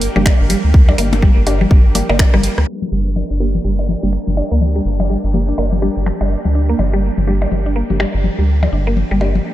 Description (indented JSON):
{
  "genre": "minimal techno",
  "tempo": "124 BPM",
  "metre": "4/4",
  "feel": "swing 60% on 16ths",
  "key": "G minor",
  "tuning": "A4 = 439 Hz",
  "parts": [
    { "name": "rubbery square bass", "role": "bass", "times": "0.0-9.4 s", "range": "G1 to D2", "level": "-16 LUFS", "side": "equal", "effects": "sidechain pumping" },
    { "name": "house drum kit", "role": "drums", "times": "0.0-8.1 s", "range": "finger snaps, hi-hat, rim click", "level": "-24 LUFS", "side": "equal", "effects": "overdrive" },
    { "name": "ethereal airy pad", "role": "texture", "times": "0.0-9.5 s", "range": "D4 to G5", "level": "-29 LUFS", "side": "right 2 dB", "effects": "ensemble chorus, built-in reverb, sidechain pumping" },
    { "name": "pulsing gated texture", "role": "texture", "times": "0.0-9.4 s", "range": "Bb3 to D5", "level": "-32 LUFS", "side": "left 1 dB", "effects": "none" },
    { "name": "mallet-like synth pluck", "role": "riff", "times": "0.2-9.1 s", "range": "G3 to D4", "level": "-22 LUFS", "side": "right 1 dB", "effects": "wide subtle chorus, sidechain pumping, diffuse ambient delay" },
    { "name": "filtered dub chord stab", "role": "stabs", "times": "0.2-9.3 s", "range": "Bb3 to G4", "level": "-27 LUFS", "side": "left 2 dB", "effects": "none" },
    { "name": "electronic toms and percussion blips", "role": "percussion", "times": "0.2-9.4 s", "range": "none", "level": "-22 LUFS", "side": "left 3 dB", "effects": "analog delay" },
    { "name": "electronic kick drum", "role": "drums", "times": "0.3-2.3 s", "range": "none", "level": "-10 LUFS", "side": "equal", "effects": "overdrive" }
  ],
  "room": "light reverb",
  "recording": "low-pass filter",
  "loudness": "-13 LUFS",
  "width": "side -14 dB against mid",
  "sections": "0.0-2.7 A section; 2.7-9.5 B section",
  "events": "drum fill 2.2-2.7; band accent 2.6; filter sweep on synth arpeggio sound 2.7-9.5; filter sweep 2.7-9.5",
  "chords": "0.0 Gm"
}